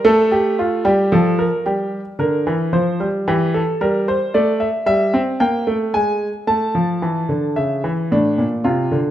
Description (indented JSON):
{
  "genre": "classical, baroque-style two-part invention for grand piano",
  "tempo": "112 BPM",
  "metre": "3/4",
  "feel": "straight",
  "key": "G minor, D minor from 4.9 s",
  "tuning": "A4 = 441 Hz",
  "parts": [
    { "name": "warm grand piano", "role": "solo", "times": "0.0-9.1 s", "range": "A2 to A5", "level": "-16 LUFS", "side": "equal", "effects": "none" }
  ],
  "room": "moderate recital hall reverb, RT60 1.4 s",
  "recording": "close, detailed microphones",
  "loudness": "-16 LUFS",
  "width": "side -12 dB against mid",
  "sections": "0.0-1.7 A section; 1.7-8.1 B section",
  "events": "none",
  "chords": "0.1 Fadd9; 1.1 Fadd11; 1.7 Gm; 2.7 F5; 3.3 Edim; 4.3 D5/A; 4.9 Edim/G; 5.9 N.C.; 6.5 Asus4; 7.6 C#m; 8.1 Dm/A"
}